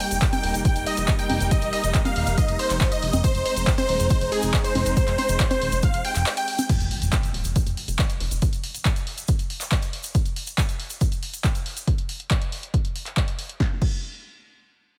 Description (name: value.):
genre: uplifting trance.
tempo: 139 BPM.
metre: 4/4.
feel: straight.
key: unclear.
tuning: A4 = 441 Hz.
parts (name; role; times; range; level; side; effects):
supersaw chords; melody; 0.0-6.6 s; Ab4 to G5; -29 LUFS; equal; sidechain pumping, tape echo.
unison pluck; second line; 0.0-6.6 s; Ab4 to G5; -35 LUFS; equal; sidechain pumping, tape echo.
warm studio string section; sustained chords; 0.0-6.7 s; G3 to Eb4; -33 LUFS; equal; sidechain pumping.
punchy analog drum machine; drums; 0.0-13.9 s; congas, crash cymbal, handclaps, hi-hat, snare drum; -32 LUFS; equal; none.
plucky analog bass; bass; 0.1-8.4 s; Eb1 to F1; -28 LUFS; equal; sidechain pumping.
egg shaker; percussion; 0.1-11.9 s; none; -38 LUFS; equal; none.
electronic kick drum; drums; 0.2-13.9 s; none; -25 LUFS; equal; none.
impact; sound effects; 6.7-8.4 s; none; -36 LUFS; equal; none.
room: light reverb.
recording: none.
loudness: -23 LUFS.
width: mono.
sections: 0.0-6.7 A section; 6.7-13.6 B section; 13.6-15.0 C section.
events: drop 0.0-6.7; impact 6.7-8.4.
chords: 0.0 Eb; 3.2 Ab; 6.7 N.C..